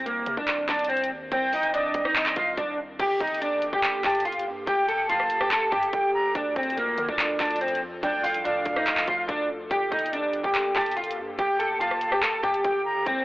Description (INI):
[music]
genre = hip hop, trap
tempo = 143 BPM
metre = 4/4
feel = half-time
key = G minor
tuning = A4 = 444 Hz
[part]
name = electric guitar at the edge of break-up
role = melody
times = 0.0-13.2 s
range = Bb3 to A4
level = -25 LUFS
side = equal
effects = analog chorus, digital delay
[part]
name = airy breathy pad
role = sustained chords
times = 0.0-13.2 s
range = Eb3 to A4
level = -38 LUFS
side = equal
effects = chorus
[part]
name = long sustained 808-style bass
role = bass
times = 0.0-13.2 s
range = G1 to D3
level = -46 LUFS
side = equal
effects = none
[part]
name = trap drum kit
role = drums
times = 0.1-13.2 s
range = crash cymbal, handclaps, hi-hat, kick drum, rim click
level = -28 LUFS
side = equal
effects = overdrive, vintage 12-bit sampler grit
[part]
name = breathy bright concert flute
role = second line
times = 0.7-13.1 s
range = Eb5 to Bb5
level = -28 LUFS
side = right 1 dB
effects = digital delay
[sound]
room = light reverb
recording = blown-out, overdriven recording, overdrive, telephone sound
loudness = -23 LUFS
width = side -19 dB against mid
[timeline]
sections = 0.0-3.0 A section; 3.0-13.2 A section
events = none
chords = 0.0 Cm; 3.0 Gmadd9; 6.4 Dm; 9.7 Gmadd9